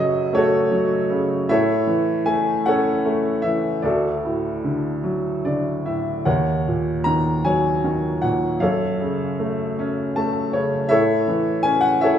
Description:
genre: classical, lyrical solo piano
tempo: 51 BPM (dotted quarters)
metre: 6/8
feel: uneven beats, rubato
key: unclear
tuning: A4 = 442 Hz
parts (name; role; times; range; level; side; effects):
- clear baby grand piano; solo; 0.0-12.2 s; D2 to A#5; -18 LUFS; equal; none
room: wet recital hall reverb, RT60 1.7 s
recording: recorded in a church or concert hall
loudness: -18 LUFS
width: side -9 dB against mid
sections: 0.0-12.2 A section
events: grand piano fill 5.0-6.3, 9.8-10.9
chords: 0.0 F#m; 1.5 A; 3.8 D; 6.3 D#m7; 8.6 F#m; 10.9 A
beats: 0.35 | 1.51 2.67 | 3.85 5.04 | 6.26 7.45 | 8.61 9.78 | 10.90 12.02

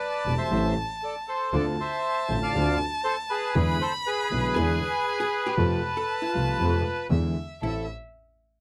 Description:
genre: tango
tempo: 118 BPM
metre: 4/4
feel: rubato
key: A minor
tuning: A4 = 440 Hz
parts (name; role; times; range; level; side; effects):
- bandoneon; melody; 0.0-7.9 s; G#4 to F5; -30 LUFS; equal; none
- warm violin; second line; 0.0-7.9 s; E5 to B5; -35 LUFS; equal; none
- warm concert grand piano; accompaniment; 0.3-7.8 s; E1 to G4; -32 LUFS; equal; none
- clear double bass; bass; 0.3-7.8 s; E1 to F2; -30 LUFS; equal; none
- archtop guitar, miked and amplified; second line; 4.6-7.9 s; E4 to B4; -37 LUFS; equal; none
room: light reverb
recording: dry, close 1970s-style studio recording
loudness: -26 LUFS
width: mono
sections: 0.0-7.6 A section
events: none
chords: 0.0 Am7; 1.5 Dm7; 3.6 E7; 5.6 F; 7.1 E7; 7.6 Am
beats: 0.01 0.52 1.03 | 1.54 2.04 2.55 3.05 | 3.56 4.06 4.56 5.07 | 5.58 6.08 6.59 7.11 | 7.62

